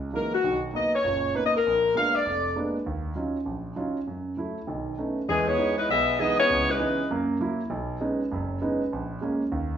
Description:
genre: jazz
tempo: 198 BPM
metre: 4/4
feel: swing 60% on 8ths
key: unclear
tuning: A4 = 440 Hz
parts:
  - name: warm concert grand piano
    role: accompaniment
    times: 0.0-9.8 s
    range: F1 to F4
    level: -28 LUFS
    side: right 2 dB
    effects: none
  - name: warm saxophone section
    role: melody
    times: 0.2-2.6, 5.3-7.1 s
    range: E3 to F5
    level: -23 LUFS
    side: left 2 dB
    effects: none
room: wet large studio reverb, RT60 0.8 s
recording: band playing live in one room, nothing above 7.5 kHz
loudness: -24 LUFS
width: side -9 dB against mid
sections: 0.0-5.3 A section; 5.3-9.8 B section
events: none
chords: 0.4 Bmaj7; 1.7 Bb7b9; 2.9 Ebm9; 4.1 Gbm7; 4.7 B9; 5.3 Emaj7; 6.5 Dbm9; 7.1 Gb7; 7.7 B69; 8.9 Bbm7

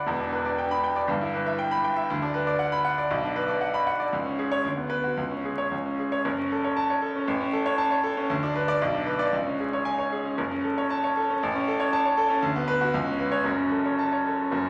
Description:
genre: classical, virtuoso piano study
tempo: 117 BPM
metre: 2/4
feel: rubato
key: F# minor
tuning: A4 = 440 Hz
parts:
  - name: bright baby grand piano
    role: solo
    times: 0.0-14.7 s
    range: E1 to B5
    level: -26 LUFS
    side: equal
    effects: none
room: wet recital hall reverb, RT60 1.7 s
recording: vinyl crackle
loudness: -26 LUFS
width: mono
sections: 0.0-6.3 A section; 6.3-14.5 B section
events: none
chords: 0.1 Em7; 1.1 Em/G; 2.1 Bm/D; 3.1 Bm; 4.1 C#5; 4.6 Bm/D; 5.2 C#5; 6.3 F#m; 7.3 A; 8.3 Bm/D; 8.8 Bm; 9.3 C#5; 10.4 F#m; 11.4 A; 12.4 Bm/D; 12.9 Bsus2/C#; 13.5 F#m

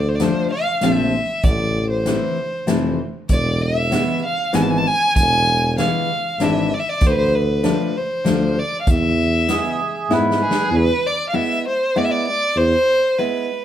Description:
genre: klezmer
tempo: 97 BPM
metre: 3/4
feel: straight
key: E phrygian dominant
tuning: A4 = 440 Hz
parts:
  - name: rich violin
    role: melody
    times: 0.0-13.6 s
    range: G#4 to A5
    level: -20 LUFS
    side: equal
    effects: none
  - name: mellow tuba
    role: bass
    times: 0.0-12.7 s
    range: E1 to G#2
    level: -21 LUFS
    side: equal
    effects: none
  - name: nylon-string guitar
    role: accompaniment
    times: 0.2-13.5 s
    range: E3 to E4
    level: -21 LUFS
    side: left 2 dB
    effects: none
  - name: swinging big-band drum kit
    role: drums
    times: 0.2-10.7 s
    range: hi-hat, kick drum, snare drum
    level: -24 LUFS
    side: equal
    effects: none
  - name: mellow accordion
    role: second line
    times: 9.5-10.7 s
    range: G#4 to B4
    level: -22 LUFS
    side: right 2 dB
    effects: none
room: moderate studio reverb, RT60 0.8 s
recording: band playing live in one room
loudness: -16 LUFS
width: side -10 dB against mid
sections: 0.0-10.7 A section; 10.7-13.6 B section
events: drum fill 10.1-10.7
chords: 0.0 Dm; 1.4 Am; 3.3 E; 7.0 Dm; 8.9 E

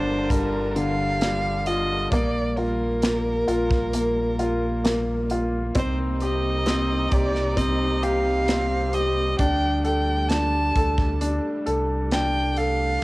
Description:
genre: pop ballad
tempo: 66 BPM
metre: 4/4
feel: straight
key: unclear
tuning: A4 = 440 Hz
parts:
  - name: rich violin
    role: melody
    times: 0.0-13.0 s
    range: Bb4 to A5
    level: -27 LUFS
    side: right 1 dB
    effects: cassette tape
  - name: clear upright piano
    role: accompaniment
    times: 0.0-13.0 s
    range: D3 to A4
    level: -25 LUFS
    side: left 1 dB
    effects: cassette tape
  - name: warm studio string section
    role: sustained chords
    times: 0.0-13.0 s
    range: C3 to A5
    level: -34 LUFS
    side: right 2 dB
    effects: cassette tape
  - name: sub bass with octave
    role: bass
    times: 0.0-13.0 s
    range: G1 to D2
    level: -27 LUFS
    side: equal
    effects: none
  - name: downlifter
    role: sound effects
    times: 0.0-5.8 s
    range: none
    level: barely audible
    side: none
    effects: none
  - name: modern studio drum kit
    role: drums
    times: 0.3-12.8 s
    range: hi-hat, kick drum, snare drum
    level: -26 LUFS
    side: equal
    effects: cassette tape
room: small room ambience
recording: home recording on cassette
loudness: -21 LUFS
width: side -20 dB against mid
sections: 0.0-13.0 A section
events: none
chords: 0.0 Gm7; 2.1 Bb5; 5.8 Cm7; 9.4 Dsus4

